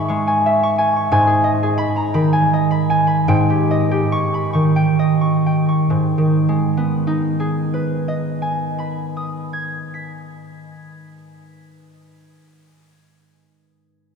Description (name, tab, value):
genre	classical, solo harp piece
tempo	40-60 BPM (dotted quarters)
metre	6/8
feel	rubato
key	G# minor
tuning	A4 = 440 Hz
part	concert harp	solo	0.0-12.4 s	G#2 to B6	-16 LUFS	equal	none
room	wet cathedral reverb, RT60 5.3 s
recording	heard from further back in the room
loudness	-15 LUFS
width	side -6 dB against mid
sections	0.0-5.9 A section; 5.9-11.0 B section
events	slowing down 0.1-5.9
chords	0.0 C#m/G#; 1.1 G#m; 3.3 D#7/G#; 5.9 G#m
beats	0.12 | 1.13 2.15 | 3.28 4.53 | 5.92 7.19 | 8.44 9.67